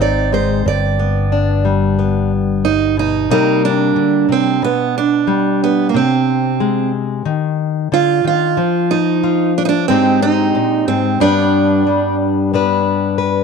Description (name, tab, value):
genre	acoustic folk-pop ballad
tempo	91 BPM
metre	4/4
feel	straight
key	unclear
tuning	A4 = 438 Hz
part	picked steel-string acoustic guitar	melody	0.0-12.2 s	Bb3 to D5	-15 LUFS	right 11 dB	none
part	fingerpicked plugged-in steel-string acoustic guitar	accompaniment	0.0-13.4 s	G2 to B4	-16 LUFS	left 9 dB	none
part	fingered electric bass	bass	0.0-3.3 s	G1 to Ab1	-18 LUFS	equal	none
room	moderate spring reverb, RT60 1.5 s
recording	1960s-style stereo with parts hard left and right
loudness	-13 LUFS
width	side -5 dB against mid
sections	0.0-3.3 A section; 3.3-13.4 B section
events	none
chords	0.0 Ab; 0.7 G; 3.3 C5; 4.6 G/B; 5.9 Ab/C; 7.3 Dm; 8.6 N.C.; 9.9 Abmaj7; 11.2 G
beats	0.00 | 0.66 1.31 1.98 2.64 | 3.30 3.96 4.62 5.28 | 5.94 6.60 7.26 7.92 | 8.57 9.23 9.89 10.55 | 11.21 11.87 12.52 13.19